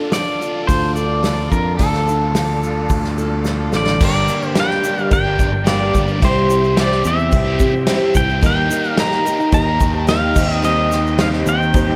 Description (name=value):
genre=folk rock and heartland rock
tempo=109 BPM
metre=4/4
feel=straight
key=G minor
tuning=A4 = 440 Hz
part: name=picked twelve-string acoustic guitar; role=accompaniment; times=0.0-12.0 s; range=G2 to A4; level=-25 LUFS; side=equal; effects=none
part: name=tonewheel organ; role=sustained chords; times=0.0-12.0 s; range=A4 to G5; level=-34 LUFS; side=equal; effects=none
part: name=overdriven electric guitar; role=riff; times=0.0-12.0 s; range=G2 to A4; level=-27 LUFS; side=equal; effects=phaser
part: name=pedal steel guitar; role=melody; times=0.1-12.0 s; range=A4 to Bb5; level=-23 LUFS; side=equal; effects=tape echo
part: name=natural country drum kit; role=drums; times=0.1-11.9 s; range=crash cymbal, hi-hat, kick drum, snare drum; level=-22 LUFS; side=equal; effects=none
part: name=tube shaker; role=percussion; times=0.1-11.9 s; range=none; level=-38 LUFS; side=equal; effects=none
part: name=picked electric bass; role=bass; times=0.7-12.0 s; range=G1 to C3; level=-22 LUFS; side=equal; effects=none
part: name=dark upright piano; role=accompaniment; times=4.0-12.0 s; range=G4 to F5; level=-32 LUFS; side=equal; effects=none
room=light reverb, small room ambience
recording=none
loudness=-17 LUFS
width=mono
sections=0.0-4.0 A section; 4.0-12.0 B section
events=drum fill 3.5-4.0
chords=0.0 Dm; 4.0 Gm; 6.2 C; 8.4 Eb; 10.4 Cm/Eb